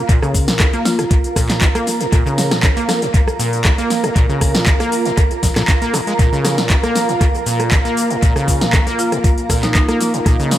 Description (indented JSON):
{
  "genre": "acid house",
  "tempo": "118 BPM",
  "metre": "4/4",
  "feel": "straight",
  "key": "Bb minor",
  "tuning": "A4 = 440 Hz",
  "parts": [
    { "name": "liquid acid bass", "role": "riff", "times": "0.0-10.6 s", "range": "Bb1 to Bb3", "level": "-20 LUFS", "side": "equal", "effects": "chorus, tube saturation, cassette tape, sidechain pumping, tape echo" },
    { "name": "granular cloud pad", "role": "texture", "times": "0.0-10.6 s", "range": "F4 to Bb5", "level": "-22 LUFS", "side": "right 2 dB", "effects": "built-in reverb, sidechain pumping" },
    { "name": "electro analog drum machine", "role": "drums", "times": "0.1-10.6 s", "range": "cabasa, handclaps, hi-hat, rim click, snare drum", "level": "-19 LUFS", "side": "equal", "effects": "overdrive, dub echo" },
    { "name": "electronic kick drum", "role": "drums", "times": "0.1-10.4 s", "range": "none", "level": "-14 LUFS", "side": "equal", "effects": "none" },
    { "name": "marimba with hard mallets", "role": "melody", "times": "0.9-1.2, 9.0-9.8 s", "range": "Eb4 to F4", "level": "-25 LUFS", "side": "equal", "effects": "dub echo" },
    { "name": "dark analog pad", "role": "sustained chords", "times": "6.2-10.6 s", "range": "Bb3 to F5", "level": "-26 LUFS", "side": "left 1 dB", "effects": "chorus, sidechain pumping" }
  ],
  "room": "moderate echo chamber reverb, RT60 1.8 s",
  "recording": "echo-heavy mix",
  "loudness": "-13 LUFS",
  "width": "side -12 dB against mid",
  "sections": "0.0-10.6 A section",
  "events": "none",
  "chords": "0.0 Bb5"
}